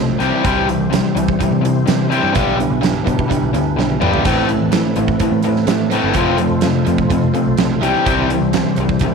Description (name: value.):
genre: classic rock.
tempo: 126 BPM.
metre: 4/4.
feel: straight.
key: unclear.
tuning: A4 = 439 Hz.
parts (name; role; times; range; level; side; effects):
tonewheel organ; sustained chords; 0.0-9.1 s; F3 to C5; -25 LUFS; left 1 dB; overdrive, chorus vibrato, slow rotary speaker.
biting overdriven guitar; riff; 0.0-9.1 s; A2 to G4; -20 LUFS; right 14 dB; spring reverb.
overdriven electric guitar; riff; 0.0-9.1 s; F2 to C4; -18 LUFS; left 12 dB; none.
overdriven picked electric bass; bass; 0.0-9.1 s; F1 to C3; -22 LUFS; equal; none.
huge arena drum kit; drums; 0.2-9.1 s; hi-hat, kick drum, snare drum, splash cymbal, toms; -21 LUFS; right 5 dB; none.
room: light reverb.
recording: 1960s-style stereo with parts hard left and right.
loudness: -14 LUFS.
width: side -5 dB against mid.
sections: 0.0-9.1 A section.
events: drum fill 3.8-4.3.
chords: 0.2 C; 2.3 G6/B; 4.3 Amadd9; 6.2 F; 7.8 C.